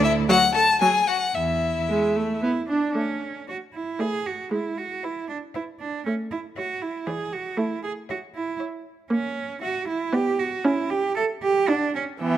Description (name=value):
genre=quick classical-period movement for string quartet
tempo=116 BPM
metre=3/4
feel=rubato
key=A major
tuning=A4 = 441 Hz
part: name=rich violin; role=melody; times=0.0-12.4 s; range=E4 to A5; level=-30 LUFS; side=left 10 dB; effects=none
part: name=rich violin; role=second line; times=0.0-12.4 s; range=B4 to A5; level=-22 LUFS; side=left 4 dB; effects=none
part: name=clear cello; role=bass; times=0.0-12.4 s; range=D2 to A4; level=-26 LUFS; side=right 4 dB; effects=none
part: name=clear viola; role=accompaniment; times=0.3-12.4 s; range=E3 to D4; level=-25 LUFS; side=right 2 dB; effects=none
room=moderate recital hall reverb, RT60 1.5 s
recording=close, detailed microphones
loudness=-22 LUFS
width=side -11 dB against mid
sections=0.0-3.0 A section; 3.0-12.4 B section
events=none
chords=0.0 D; 1.4 A5/E; 2.4 E5/B; 3.0 A; 4.0 Bm7/A; 4.5 E/G#; 6.1 A; 7.1 E7; 7.6 A; 9.1 F#7/A#; 10.1 Bm; 10.6 A/C#; 11.7 D